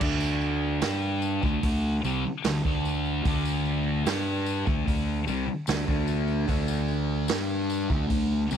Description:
psychedelic rock; 74 BPM; 4/4; straight; A4 = 440 Hz
thick fuzz guitar; riff; 0.0-8.6 s; C3 to G4; -28 LUFS; equal; distortion, phaser
fuzz fingered electric bass; bass; 0.0-8.6 s; C2 to G2; -29 LUFS; equal; overdrive
vintage drum kit; drums; 0.0-8.3 s; crash cymbal, hi-hat, kick drum, snare drum; -30 LUFS; right 2 dB
tambourine; percussion; 0.0-8.6 s; -42 LUFS; left 16 dB
small room ambience; 1960s-style stereo; -24 LUFS; side -8 dB against mid
0.0-8.6 A section
0.0 D5

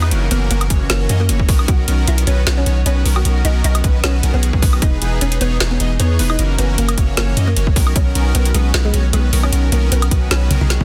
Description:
future bass; 153 BPM; 4/4; swing 54% on 16ths, half-time; B major; A4 = 440 Hz
mallet-like synth pluck; melody; 0.0-10.8 s; G#3 to F#5; -28 LUFS; equal; phaser, ensemble chorus, sidechain pumping, tape echo
Celtic harp; arpeggios; 0.0-1.4 s; barely audible
big bright polysynth; riff; 0.0-10.8 s; D#3 to D#5; -26 LUFS; equal; subtle chorus, sidechain pumping
long sustained 808-style bass; bass; 0.0-10.8 s; E1 to F#2; -18 LUFS; equal; tube saturation, sidechain pumping
trap drum kit; drums; 0.0-10.8 s; hi-hat, snare drum, toms, woodblock; -23 LUFS; equal
downlifter; sound effects; 0.0-1.7 s; -40 LUFS; equal
electronic kick drum; drums; 0.7-10.8 s; -17 LUFS; equal
digital ambience; dense, heavily limited modern master; -16 LUFS; mono
0.0-10.8 A section
drum fill 10.5-10.8
0.1 F#7; 1.5 Bmaj9; 4.8 Emaj7; 6.4 F#7; 7.8 Bmaj9

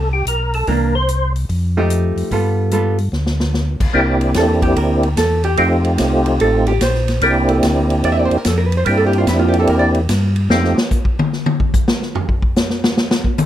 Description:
soul jazz organ trio; 146 BPM; 4/4; swing 66% on 8ths; C mixolydian; A4 = 440 Hz
percussive tonewheel organ; melody; 0.0-1.3, 3.9-10.8 s; A3 to C5; -16 LUFS; right 1 dB; slow rotary speaker, chorus vibrato
mellow tonewheel organ; bass; 0.0-10.7 s; A1 to G2; -18 LUFS; equal; slow rotary speaker
swinging big-band drum kit; drums; 0.3-13.5 s; crash cymbal, hi-hat, kick drum, ride cymbal, snare drum, toms; -19 LUFS; left 1 dB
hollow-body jazz guitar; accompaniment; 0.7-9.9 s; E3 to E5; -19 LUFS; right 2 dB
moderate studio reverb, RT60 0.5 s; -14 LUFS; side -12 dB against mid
0.0-3.9 A section; 3.9-13.5 B section
drum fill 3.1-3.5; hollow-body jazz guitar solo 3.9-13.5; drum solo 10.5-13.5
0.0 Fadd9 (rootless); 0.7 C9; 1.5 F9; 2.3 G9; 3.9 C9; 5.6 F9; 7.2 C9; 10.5 N.C.

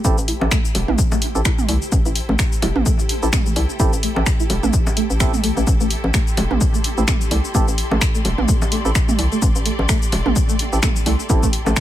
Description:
minimal techno; 128 BPM; 4/4; swing 57% on 16ths; A minor; A4 = 439 Hz
percussive organ stab; stabs; 0.0-11.4 s; C4 to A4; -28 LUFS; right 4 dB; chorus, digital delay
hollow knocking FM bass; bass; 0.0-11.7 s; E1 to C2; -21 LUFS; equal; sidechain pumping
electronic kick drum; drums; 0.0-11.8 s; -19 LUFS; equal
techno drum kit; drums; 0.0-11.8 s; finger snaps, hi-hat, shaker; -24 LUFS; left 2 dB; overdrive
clear studio string section; texture; 0.0-11.8 s; E4 to C6; -32 LUFS; left 1 dB; sidechain pumping
swarming drone; texture; 0.0-11.8 s; G4; -33 LUFS; left 1 dB; built-in reverb, sidechain pumping
string-like resonator pluck; riff; 0.3-11.7 s; A3 to E4; -26 LUFS; equal; analog chorus, sidechain pumping, digital delay
electronic bongos and toms; percussion; 0.4-11.7 s; -25 LUFS; right 3 dB; overdrive, digital delay
digital ambience; -16 LUFS; side -12 dB against mid
0.0-11.8 A section
fade-in on string section 0.0-11.8; filter sweep on synth pluck 0.0-11.8
0.0 Am7

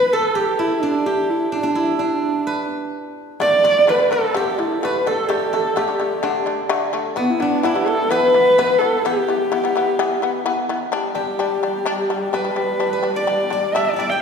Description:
mongolian traditional, Mongolian folk; 128 BPM; 4/4; straight; G gong mode; A4 = 441 Hz
dark horsehead fiddle; melody; 0.0-14.2 s; B3 to G5; -18 LUFS; equal
steel-string zither; second line; 0.0-14.2 s; B3 to G5; -25 LUFS; right 3 dB
shamisen; arpeggios; 3.4-14.2 s; D3 to D4; -22 LUFS; left 4 dB
warm horsehead fiddle; drone; 10.9-14.2 s; G3; -28 LUFS; equal
wet scoring stage reverb, RT60 1.8 s; recorded in a church or concert hall; -17 LUFS; side -6 dB against mid
0.0-10.9 A section; 10.9-14.2 B section
0.0 N.C.; 3.4 D5; 7.2 E5; 10.9 G5

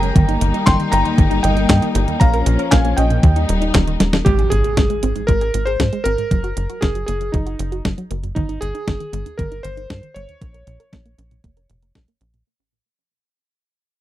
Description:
italo disco; 117 BPM; 4/4; straight; A4 = 440 Hz
warm electric grand piano; melody; 0.0-11.9 s; Eb4 to C6; -23 LUFS; equal; tape echo
clear symphonic string section; sustained chords; 0.0-4.3 s; F3 to Ab4; -22 LUFS; left 3 dB
wide unison pluck; arpeggios; 0.0-12.4 s; Eb2 to Bb4; -25 LUFS; right 2 dB; tape echo
tight sequencer bass; bass; 0.0-12.4 s; Eb1 to Ab2; -20 LUFS; equal
clean 12-bit digital drum machine; drums; 0.0-12.4 s; handclaps, hi-hat, snare drum; -21 LUFS; equal
electronic kick drum; drums; 0.2-12.1 s; -16 LUFS; equal
impact; sound effects; 4.3-6.3 s; -25 LUFS; equal
light reverb; dry, close 1970s-style studio recording; -15 LUFS; side -14 dB against mid
0.0-4.3 A section; 4.3-12.5 B section
drum fill 4.0; band accent 4.1; fade-out 4.3-12.5; impact 4.3-6.3; filter sweep on synth arpeggio sound 4.3-12.5
0.2 Eb/G; 2.2 Bbm; 3.2 Eb; 4.3 N.C.; 6.3 Gb; 8.4 Eb/G; 10.4 Bbm

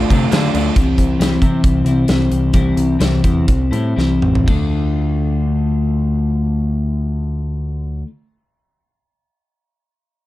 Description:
indie rock; 116-138 BPM; 4/4; straight; D minor; A4 = 440 Hz
overdriven electric guitar; riff; 0.0-0.8 s; D3 to F4; -22 LUFS; right 9 dB; wide subtle chorus, slapback echo
twelve-string electric guitar; riff; 0.0-8.1 s; C3 to F4; -18 LUFS; left 2 dB; wide subtle chorus
growling picked electric bass; bass; 0.0-8.0 s; A1 to D3; -19 LUFS; equal; overdrive
big rock drum kit; drums; 0.1-4.6 s; crash cymbal, hi-hat, kick drum, snare drum, toms; -18 LUFS; equal
light reverb; dark, warm production; -14 LUFS; side -16 dB against mid
0.8-4.5 A section; 4.5-8.6 B section
slowing down 0.8-4.5; drum fill 4.0-4.5
0.0 Dm; 0.8 C; 4.5 Dm

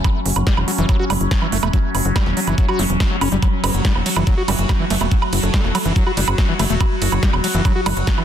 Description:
psychedelic trance; 142 BPM; 4/4; straight; F# phrygian; A4 = 440 Hz
overtone-sweeping drone; sustained chords; 0.0-8.2 s; F#3 to F#4; -24 LUFS; left 1 dB; chorus, built-in reverb, sidechain pumping
screaming distorted acid line; riff; 0.0-8.2 s; E3 to F#4; -24 LUFS; moving between left 6 dB and right 7 dB; distortion, chorus, auto-pan, sidechain pumping, digital delay
big-room dance drum kit; drums; 0.0-8.2 s; hi-hat, ride cymbal, snare drum, woodblock; -23 LUFS; right 4 dB; overdrive
electronic kick drum; drums; 0.0-8.2 s; -17 LUFS; equal
tight sequencer bass; bass; 0.3-8.0 s; E1 to F#1; -20 LUFS; equal
formant-sweep wobble bass; second line; 3.6-5.9 s; E3 to B3; -32 LUFS; right 3 dB; chorus, vintage 12-bit sampler grit, sidechain pumping, high-pass filter, ping-pong delay
light reverb; dense, heavily limited modern master; -15 LUFS; side -9 dB against mid
0.0-8.2 A section
0.0 F#5

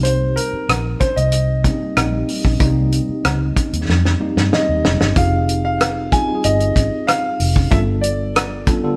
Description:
lush 1970s-style soul; 94 BPM; 4/4; straight; F minor; A4 = 440 Hz
clear concert grand piano; melody; 0.0-8.6 s; Bb4 to Ab5; -24 LUFS; equal
mellow tine electric piano; accompaniment; 0.0-9.0 s; D3 to A4; -25 LUFS; equal
vintage muted fingered electric bass; bass; 0.0-8.8 s; F1 to G2; -22 LUFS; equal
warm soul drum kit; drums; 0.0-8.8 s; hi-hat, kick drum, rim click, snare drum; -20 LUFS; equal
moderate stone room reverb, RT60 1.3 s; band playing live in one room; -17 LUFS; mono
0.0-5.2 A section; 5.2-9.0 B section
drum fill 3.9-5.2
0.0 Cm7; 5.2 Fm7; 7.7 G7

